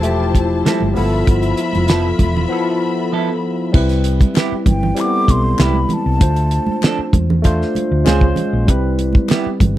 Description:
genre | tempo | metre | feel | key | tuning
lush 1970s-style soul | 97 BPM | 4/4 | straight | C major | A4 = 440 Hz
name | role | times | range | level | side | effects
warm studio string section | second line | 0.0-3.7 s | E4 to B5 | -23 LUFS | left 4 dB | none
barky tine electric piano | accompaniment | 0.0-9.8 s | F3 to C5 | -19 LUFS | left 1 dB | analog chorus
hollow-body short-scale fingered electric bass | bass | 0.0-9.8 s | E1 to E2 | -18 LUFS | equal | none
damped 70s drum kit | drums | 0.0-9.8 s | crash cymbal, hi-hat, kick drum, snare drum | -14 LUFS | equal | none
congas | percussion | 0.0-9.7 s | none | -22 LUFS | right 4 dB | none
clean electric guitar | riff | 0.7-9.5 s | F3 to A4 | -22 LUFS | right 7 dB | none
group handclap | percussion | 4.4-9.4 s | none | -32 LUFS | left 12 dB | none
breathy mellow concert flute | melody | 4.7-7.2 s | G5 to D6 | -21 LUFS | equal | slapback echo
room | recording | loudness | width
studio reverb | dry, close 1970s-style studio recording | -13 LUFS | side -14 dB against mid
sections
0.0-3.7 A section; 3.7-9.8 B section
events
break 2.5-3.7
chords
0.0 Fmaj9; 1.0 G13; 3.7 Cmaj7; 6.2 Dm7; 8.1 Dbmaj7; 8.7 Cmaj7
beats
0.04 0.66 | 1.27 1.89 2.51 3.13 | 3.74 4.36 4.98 5.59 | 6.21 6.83 7.45 8.06 | 8.68 9.30

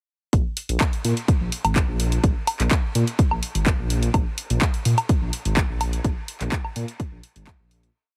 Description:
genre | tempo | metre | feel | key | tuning
melodic techno | 126 BPM | 4/4 | straight | unclear | A4 = 440 Hz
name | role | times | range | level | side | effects
swelling detuned saw bass | bass | 0.3-7.9 s | Ab1 to Bb2 | -26 LUFS | equal | sidechain pumping
electronic kick drum | drums | 0.3-7.6 s | none | -23 LUFS | equal | overdrive
house drum kit | drums | 0.3-7.9 s | handclaps, hi-hat, woodblock | -29 LUFS | equal | overdrive
room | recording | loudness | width
digital ambience | heavily compressed radio sound, multiband compression | -23 LUFS | mono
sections
0.3-8.0 drop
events
drop 0.3-8.0; fade-out 5.4-8.0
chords
none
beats
| 0.33 0.81 1.28 1.76 | 2.24 2.71 3.19 3.66 | 4.14 4.62 5.09 5.57 | 6.04 6.52 7.00 7.47

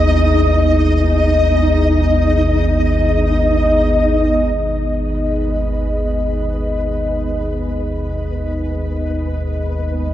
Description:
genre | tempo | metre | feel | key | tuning
dark ambient drone | free time | none | none | G# minor | A4 = 440 Hz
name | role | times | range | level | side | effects
dark analog pad | sustained chords | 0.0-10.1 s | B3 to D#5 | -18 LUFS | left 1 dB | chorus, phaser
deep rumbling drone | drone | 0.0-10.1 s | G#1 to D#2 | -17 LUFS | equal | built-in reverb
flickering grainy texture | texture | 0.0-10.1 s | B3 to D#5 | -22 LUFS | equal | built-in reverb
room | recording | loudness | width
moderate huge ambient reverb, RT60 9.1 s | in a vast, echoing space | -14 LUFS | side -12 dB against mid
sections
0.0-4.5 A section; 4.5-10.1 B section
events
none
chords
0.0 G#m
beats
free time

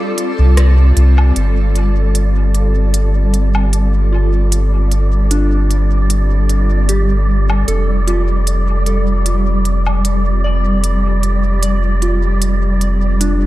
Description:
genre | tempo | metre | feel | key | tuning
ambient dub | 76 BPM | 4/4 | swing 54% on 16ths | unclear | A4 = 440 Hz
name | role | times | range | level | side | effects
granular cloud pad | sustained chords | 0.0-13.5 s | G3 to A4 | -21 LUFS | equal | built-in reverb
soft synth bell | arpeggios | 0.0-13.5 s | D4 to D5 | -25 LUFS | equal | chorus, low-pass filter, tape echo
wind-like tuned noise texture | texture | 0.0-13.5 s | D5 | -26 LUFS | right 2 dB | built-in reverb
organic electronic drum kit | drums | 0.2-13.4 s | hi-hat, rim click, woodblock | -23 LUFS | equal | dub echo
warm sub bass | bass | 0.4-13.5 s | F1 to C2 | -13 LUFS | equal | none
room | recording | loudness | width
little or no reverb | none | -12 LUFS | side -16 dB against mid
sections
0.0-1.4 A section; 1.4-13.5 B section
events
filter sweep on synth bell 1.4-13.5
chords
0.0 F; 1.4 G5; 7.7 F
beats
0.57 | 1.36 2.15 2.94 3.73 | 4.52 5.31 6.10 6.89 | 7.68 8.47 9.26 10.05 | 10.84 11.62 12.41 13.20

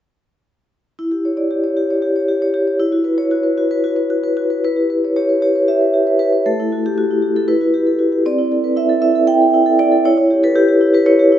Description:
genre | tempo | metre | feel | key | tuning
classical, contemporary piece for solo vibraphone | 233 BPM (eighths) | 7/8 | rubato | E dorian | A4 = 440 Hz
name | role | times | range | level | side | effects
vibraphone with medium mallets | solo | 1.0-11.4 s | A3 to G5 | -13 LUFS | equal | none
room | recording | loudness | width
wet recital hall reverb, RT60 1.6 s | nothing above 7.8 kHz | -13 LUFS | side -10 dB against mid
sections
1.0-4.6 A section; 4.6-11.4 B section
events
none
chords
1.0 Em6; 2.8 Esus2; 4.6 Em6; 6.5 A5; 7.5 Emadd9; 8.3 C69; 10.0 Em6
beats
| 0.99 1.25 1.51 1.77 2.02 2.28 2.54 | 2.79 3.05 3.30 3.56 3.82 4.08 4.36 | 4.63 4.89 5.16 5.42 5.67 5.93 6.20 | 6.46 6.72 6.97 7.23 7.49 7.74 8.00 | 8.26 8.52 8.77 9.02 9.28 9.54 9.79 | 10.05 10.30 10.56 10.81 11.07 11.32

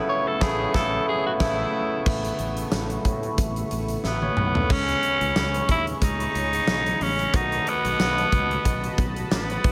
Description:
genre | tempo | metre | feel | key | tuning
1980s-style pop | 91 BPM | 4/4 | swing 55% on 16ths | unclear | A4 = 440 Hz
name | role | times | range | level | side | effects
barky tine electric piano | accompaniment | 0.0-9.7 s | C#3 to E5 | -31 LUFS | equal | none
phased analog pad | sustained chords | 0.0-9.7 s | A3 to C#6 | -37 LUFS | equal | phaser, chorus
raspy tenor saxophone | melody | 0.1-9.7 s | B3 to C#5 | -27 LUFS | equal | digital delay
sustaining fretless electric bass | bass | 0.4-9.7 s | A1 to A2 | -33 LUFS | equal | subtle chorus
huge arena drum kit | drums | 0.4-9.7 s | crash cymbal, hi-hat, kick drum, snare drum, tambourine, toms | -29 LUFS | equal | gated reverb
room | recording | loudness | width
light reverb, small room ambience | none | -24 LUFS | mono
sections
0.0-2.1 A section; 2.1-4.7 B section; 4.7-9.7 C section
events
band accent 0.0-2.1; tenor saxophone solo 0.0-2.1; drum fill 4.0-4.7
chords
0.0 Aadd9; 4.7 C#m7; 7.3 B7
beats
0.08 0.74 1.40 | 2.06 2.72 3.38 4.04 | 4.70 5.36 6.01 6.67 | 7.33 7.99 8.65 9.31

